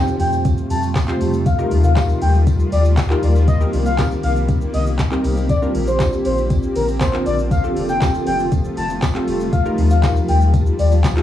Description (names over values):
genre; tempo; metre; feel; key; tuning
dance-pop; 119 BPM; 4/4; straight; unclear; A4 = 442 Hz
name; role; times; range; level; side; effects
expressive synth lead; melody; 0.0-10.9 s; Bb4 to A5; -23 LUFS; left 2 dB; chorus, sidechain pumping, plate reverb, tape echo
funky polysynth comp; accompaniment; 0.0-11.2 s; C4 to C5; -24 LUFS; equal; chorus, sidechain pumping, cassette tape, plate reverb
shimmering ambient pad; sustained chords; 0.2-11.2 s; C3 to G4; -24 LUFS; equal; chorus, built-in reverb, sidechain pumping, cassette tape
warm sub bass; bass; 0.0-11.2 s; F1 to F2; -18 LUFS; left 1 dB; sidechain pumping
impact; sound effects; 0.0-1.5 s; none; -30 LUFS; right 1 dB; none
smooth R&B drum kit; drums; 0.1-11.2 s; handclaps, hi-hat, kick drum, shaker, snare drum; -21 LUFS; left 1 dB; cassette tape
tambourine; percussion; 0.1-11.2 s; none; -43 LUFS; right 6 dB; none
room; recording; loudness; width
light reverb; home recording on cassette, studio reverb; -15 LUFS; side -12 dB against mid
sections
0.0-11.2 A section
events
impact 0.0-1.5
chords
0.0 Fadd9; 1.5 Ebadd9; 3.5 Cm7; 5.5 Bbadd9; 7.5 Fadd9; 9.5 Ebadd9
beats
0.45 0.96 | 1.46 1.97 2.47 2.97 | 3.48 3.98 4.49 4.99 | 5.50 6.00 6.50 7.01 | 7.51 8.02 8.52 9.02 | 9.53 10.03 10.54 11.04